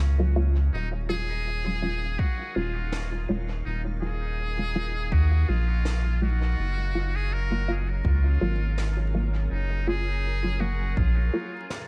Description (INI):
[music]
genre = ambient dub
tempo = 82 BPM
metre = 4/4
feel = swing 55% on 16ths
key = Eb minor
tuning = A4 = 440 Hz
[part]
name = soft additive organ-like pad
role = sustained chords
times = 0.0-11.9 s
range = Eb3 to F5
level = -45 LUFS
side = equal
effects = ensemble chorus, built-in reverb
[part]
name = round analog bass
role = bass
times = 0.0-11.3 s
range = Eb1 to Eb2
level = -28 LUFS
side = equal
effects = none
[part]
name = snare drum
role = drums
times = 0.0-11.9 s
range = none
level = -41 LUFS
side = equal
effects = dub echo
[part]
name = filtered dub chord stab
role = stabs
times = 0.2-11.5 s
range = Gb3 to F4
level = -35 LUFS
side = equal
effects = phaser, subtle chorus, cassette tape, dub echo
[part]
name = trumpet with metal mute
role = melody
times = 0.7-11.9 s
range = Eb4 to Bb4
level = -36 LUFS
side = equal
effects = dub echo
[part]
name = electronic kick drum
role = drums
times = 2.2-11.1 s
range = none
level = -28 LUFS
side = equal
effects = none
[sound]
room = light reverb, small room ambience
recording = vinyl crackle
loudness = -26 LUFS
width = mono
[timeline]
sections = 0.0-11.9 A section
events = filter sweep on synth stab 0.0-11.9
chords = 0.0 Gbmaj7; 0.7 Ebm11; 6.6 Gbmaj7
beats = 0.00 | 0.73 1.46 2.19 2.93 | 3.66 4.39 5.12 5.85 | 6.58 7.32 8.05 8.78 | 9.51 10.24 10.97 11.71